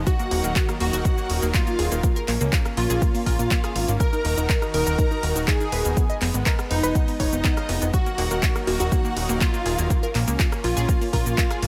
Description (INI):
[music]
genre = progressive house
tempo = 122 BPM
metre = 4/4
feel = straight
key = Eb minor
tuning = A4 = 442 Hz
[part]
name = supersaw pad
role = sustained chords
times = 0.0-11.7 s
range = Eb3 to Bb4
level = -35 LUFS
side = equal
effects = sidechain pumping
[part]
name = plucky analog bass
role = bass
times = 0.0-11.7 s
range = Eb1 to Db2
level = -27 LUFS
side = equal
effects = sidechain pumping
[part]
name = plucky unison lead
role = melody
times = 0.1-11.7 s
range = Eb4 to Bb4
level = -30 LUFS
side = equal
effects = sidechain pumping, tape echo
[part]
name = clear chamber violin section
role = second line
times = 0.1-11.7 s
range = Eb5 to Bb5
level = -36 LUFS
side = equal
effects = sidechain pumping, tape echo
[part]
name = unison pluck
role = arpeggios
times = 0.1-11.7 s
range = Bb3 to F5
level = -32 LUFS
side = equal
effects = sidechain pumping, tape echo
[part]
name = deep house drum kit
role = drums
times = 0.1-11.7 s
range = handclaps, hi-hat, rim click, shaker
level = -31 LUFS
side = equal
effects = none
[part]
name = electronic kick drum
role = drums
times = 0.1-11.5 s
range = none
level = -24 LUFS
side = equal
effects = none
[sound]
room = light reverb, digital ambience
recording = none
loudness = -22 LUFS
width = mono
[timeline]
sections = 0.0-11.7 A section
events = none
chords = 0.1 Ebmadd9; 2.0 Bbm; 4.0 Ebm; 6.0 Fdim; 7.9 Ebmadd9; 9.9 Bbm